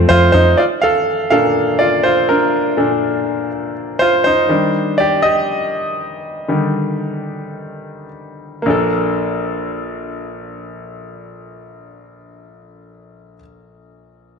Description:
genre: piano-driven pop.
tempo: 104-123 BPM.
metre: 4/4.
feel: swing 56% on 16ths.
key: Bb major.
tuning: A4 = 440 Hz.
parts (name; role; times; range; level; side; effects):
bright grand piano; accompaniment; 0.0-14.4 s; Bb1 to F5; -15 LUFS; equal; none.
vintage muted picked electric bass; bass; 0.0-0.5 s; F2; -12 LUFS; equal; none.
room: moderate scoring stage reverb, RT60 1.5 s, small room ambience.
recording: dark, warm production.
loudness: -14 LUFS.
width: side -6 dB against mid.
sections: 0.6-8.7 A section; 8.7-13.3 B section.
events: grand piano solo 0.6-8.7; slowing down 4.5-8.7.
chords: 0.0 F; 0.6 Bbmaj7; 4.5 Ebmaj7; 8.7 Bbmaj7.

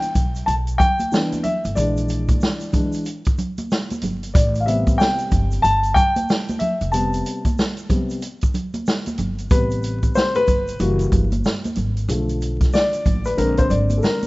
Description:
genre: hip hop, jazz-hop.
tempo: 93 BPM.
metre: 4/4.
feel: swing 63% on 16ths.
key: A minor.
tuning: A4 = 439 Hz.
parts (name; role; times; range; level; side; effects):
dark concert grand piano; accompaniment; 0.0-14.3 s; C3 to A5; -21 LUFS; left 1 dB; none.
vintage drum kit; drums; 0.0-14.3 s; hi-hat, kick drum, snare drum; -20 LUFS; equal; none.
egg shaker and congas; percussion; 0.0-14.3 s; none; -28 LUFS; right 2 dB; none.
upright bass; bass; 0.2-14.0 s; F1 to B1; -22 LUFS; equal; none.
room: studio ambience.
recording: rough home demo mix, vinyl crackle, nothing above 7.8 kHz.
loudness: -17 LUFS.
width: side -21 dB against mid.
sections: 0.0-9.5 A section; 9.5-14.3 B section.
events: grand piano solo 0.0-9.5, 9.5-14.3.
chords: 0.0 Cmaj7 (rootless); 1.8 Bb7#11; 4.3 Am9; 9.5 Am7; 10.8 F#7b9; 12.1 Bm7b5; 13.4 Bb9.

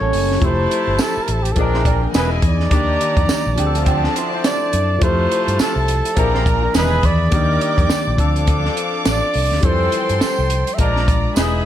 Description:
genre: lush 1970s-style soul.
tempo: 104 BPM.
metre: 4/4.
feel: swing 58% on 16ths.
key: unclear.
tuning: A4 = 440 Hz.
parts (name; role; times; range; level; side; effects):
warm flugelhorn; melody; 0.0-11.4 s; G4 to E5; -21 LUFS; right 2 dB; none.
warm chamber violin section; second line; 0.0-11.7 s; D4 to D6; -26 LUFS; left 1 dB; none.
barky tine electric piano; accompaniment; 0.0-11.7 s; Eb3 to D#5; -24 LUFS; left 4 dB; overdrive, phaser.
electric guitar through a small old amp; riff; 0.0-6.9 s; A3 to D5; -26 LUFS; right 3 dB; analog chorus.
fingered electric bass; bass; 0.0-11.6 s; E1 to G2; -20 LUFS; equal; none.
compact cocktail drum kit; drums; 0.1-11.5 s; hi-hat, kick drum, snare drum; -20 LUFS; equal; none.
clear horn section; stabs; 0.4-11.7 s; Bb2 to Bb4; -27 LUFS; left 3 dB; none.
tambourine; percussion; 1.0-11.5 s; none; -31 LUFS; right 6 dB; none.
room: studio reverb.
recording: none.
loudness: -15 LUFS.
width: side -11 dB against mid.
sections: 0.4-11.7 A section.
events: none.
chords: 0.4 Fmaj9; 1.6 Bb7; 2.1 Emaj7; 2.7 Ebmaj7; 3.6 Dm7; 5.0 Fmaj9; 6.2 Bb7; 6.7 Emaj7; 7.3 Ebmaj7; 8.2 Dm7; 9.6 Fmaj9; 10.8 Bb7.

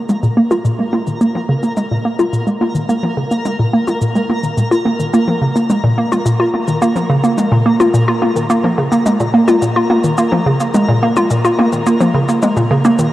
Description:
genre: ambient, sequencer-driven space music.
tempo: 107 BPM.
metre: 4/4.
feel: straight.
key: Bb minor.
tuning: A4 = 440 Hz.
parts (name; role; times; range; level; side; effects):
twinkling granular texture; texture; 0.0-13.1 s; Bb4; -24 LUFS; equal; built-in reverb.
hollow square pluck; riff; 0.1-13.0 s; Bb2 to F4; -12 LUFS; equal; chorus, analog delay.
electronic toms and shaker; percussion; 0.1-13.1 s; none; -24 LUFS; left 2 dB; analog delay.
room: moderate huge ambient reverb, RT60 8.7 s.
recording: worn, warbling old tape, cassette tape, warbly pitch drift.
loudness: -12 LUFS.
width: side -14 dB against mid.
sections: 0.0-13.1 A section.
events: fade-in on synth texture 0.0-13.1; fade-in on drum 0.0-13.1; filter sweep on synth arpeggio sound 0.0-13.1.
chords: 0.0 Bb5.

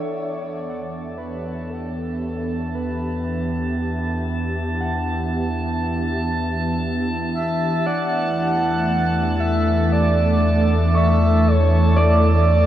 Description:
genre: ambient.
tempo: 58 BPM.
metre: 4/4.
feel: straight.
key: E dorian.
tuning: A4 = 441 Hz.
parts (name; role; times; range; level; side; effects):
breathy flute-like synth lead; melody; 0.0-12.7 s; A4 to F#5; -24 LUFS; equal; analog chorus, ping-pong delay.
airy breathy pad; sustained chords; 0.0-12.7 s; E3 to E5; -23 LUFS; equal; chorus.
Celtic harp; arpeggios; 0.0-12.7 s; D5 to C#6; -30 LUFS; equal; ping-pong delay.
round analog bass; bass; 0.0-12.7 s; E2; -22 LUFS; equal; tube saturation.
analog drone; drone; 1.6-12.7 s; E3; -29 LUFS; equal; chorus.
drifting glass-harmonics texture; texture; 1.0-12.7 s; A5; -30 LUFS; right 2 dB; chorus, built-in reverb.
room: wet huge ambient reverb, RT60 7.1 s.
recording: worn, warbling old tape, cassette tape, warbly pitch drift.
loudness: -18 LUFS.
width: side -12 dB against mid.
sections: 0.0-12.7 A section.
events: fade-in on analog synth pad 0.0-12.7; fade-in on harp 0.0-12.7; fade-in on analog synth bass 0.0-12.7; fade-in on synth drone 0.0-12.7; fade-in on synth texture 0.0-12.7; fade-in on soft synth lead 0.0-12.7.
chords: 0.0 Em7.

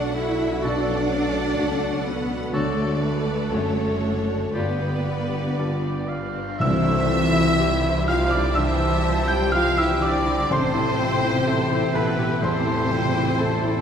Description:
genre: cinematic, emotional film score for orchestra.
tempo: 58-63 BPM.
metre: 4/4.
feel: rubato.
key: C major from 6.6 s.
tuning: A4 = 440 Hz.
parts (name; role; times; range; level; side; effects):
clear studio violin section; melody; 0.0-13.8 s; B4 to G5; -30 LUFS; left 3 dB; none.
warm studio violin section; second line; 0.0-13.8 s; C4 to E5; -32 LUFS; equal; none.
felt-muted upright piano; accompaniment; 0.0-13.8 s; G1 to G6; -28 LUFS; equal; none.
rich studio viola section; accompaniment; 0.0-13.8 s; G3 to D5; -31 LUFS; right 1 dB; none.
mellow French horn section; sustained chords; 0.0-13.7 s; B3 to D5; -30 LUFS; left 2 dB; none.
concert harp; arpeggios; 0.0-13.8 s; G2 to C#5; -31 LUFS; left 4 dB; none.
warm studio cello section; bass; 0.0-13.8 s; B2 to E4; -27 LUFS; right 1 dB; none.
warm studio double bass section; bass; 0.0-13.8 s; F#1 to D2; -28 LUFS; right 2 dB; none.
clear oboe; second line; 0.6-13.8 s; G4 to G5; -30 LUFS; right 2 dB; none.
mellow hollow concert flute; second line; 0.6-13.8 s; C#5 to A5; -32 LUFS; left 2 dB; none.
warm clarinet; second line; 0.6-4.9 s; F4 to F#4; -35 LUFS; left 2 dB; none.
cymbal swell and tam-tam; percussion; 2.5-10.5 s; none; -34 LUFS; left 2 dB; none.
timpani; percussion; 6.6-8.0 s; C3; -29 LUFS; right 2 dB; none.
room: wet scoring stage reverb, RT60 2.0 s.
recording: heard from further back in the room.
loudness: -20 LUFS.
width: side -8 dB against mid.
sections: 0.0-6.6 A section; 6.6-13.8 B section.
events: band accent 6.6-7.6.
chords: 0.0 Bm7; 2.5 Dmaj7; 4.6 G7; 6.6 C; 10.5 Am7.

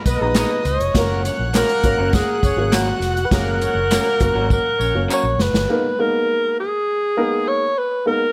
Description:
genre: uptempo 1960s-style soul.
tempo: 101 BPM.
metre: 4/4.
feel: straight.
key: G# minor.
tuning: A4 = 440 Hz.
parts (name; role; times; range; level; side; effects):
warm studio string section; second line; 0.0-5.7 s; D#5 to F#6; -31 LUFS; equal; none.
breathy alto saxophone; melody; 0.1-8.3 s; F#4 to C#5; -22 LUFS; equal; none.
clear horn section; second line; 0.1-5.0 s; A#3 to C#5; -30 LUFS; equal; none.
vintage muted fingered electric bass; bass; 0.1-5.6 s; E#1 to C#2; -26 LUFS; equal; none.
swinging big-band drum kit; drums; 0.1-5.7 s; hi-hat, kick drum, snare drum; -24 LUFS; equal; none.
tambourine and handclaps; percussion; 0.1-5.2 s; none; -33 LUFS; equal; none.
dark upright piano; accompaniment; 0.2-8.2 s; F#3 to A#5; -26 LUFS; equal; none.
electric guitar through a small old amp; stabs; 0.4-5.2 s; G#3 to A#4; -30 LUFS; equal; subtle chorus.
room: small room reverb.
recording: none.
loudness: -19 LUFS.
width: mono.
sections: 0.0-5.7 A section; 5.7-8.3 B section.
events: drum fill 4.5-5.7.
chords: 0.0 G#madd9; 0.9 F#; 5.7 G#madd9.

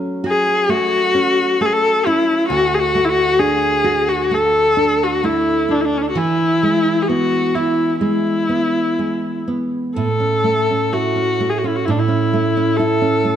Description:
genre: celtic folk.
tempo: 60-68 BPM.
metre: 4/4.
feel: rubato.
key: unclear.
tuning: A4 = 440 Hz.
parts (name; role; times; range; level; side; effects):
nylon-string guitar; accompaniment; 0.0-13.4 s; D2 to F#4; -20 LUFS; right 3 dB; none.
warm viola; melody; 0.3-13.4 s; C#4 to A4; -16 LUFS; left 2 dB; none.
room: moderate concert hall reverb, RT60 1.8 s.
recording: dark, warm production.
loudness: -14 LUFS.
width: side -9 dB against mid.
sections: 0.0-10.0 A section; 10.0-13.4 B section.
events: none.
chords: 0.0 F#m; 2.5 D; 6.2 E; 10.0 A.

